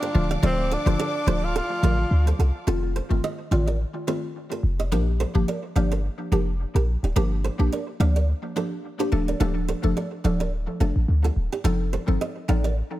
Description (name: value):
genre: afrobeats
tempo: 107 BPM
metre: 4/4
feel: swing 55% on 16ths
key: unclear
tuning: A4 = 440 Hz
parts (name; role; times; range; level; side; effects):
- breathy tenor saxophone; melody; 0.0-2.4 s; C4 to F4; -28 LUFS; equal; analog delay
- warm studio string section; sustained chords; 0.0-2.6 s; A4 to D6; -34 LUFS; equal; none
- flamenco guitar; riff; 0.0-12.7 s; Eb4 to F5; -31 LUFS; right 6 dB; analog delay
- mallet-like synth pluck; accompaniment; 0.1-12.7 s; D3 to A4; -28 LUFS; left 1 dB; chorus, phaser, analog delay
- clean 808-style bass; bass; 0.1-12.8 s; D1 to D2; -22 LUFS; equal; none
room: light reverb, small room ambience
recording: echo-heavy mix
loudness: -21 LUFS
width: side -15 dB against mid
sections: 0.0-2.7 A section; 2.7-13.0 B section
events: none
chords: 0.1 Dm; 2.7 F7; 4.9 Bb6; 7.2 Gm7; 9.1 Dm; 11.6 F7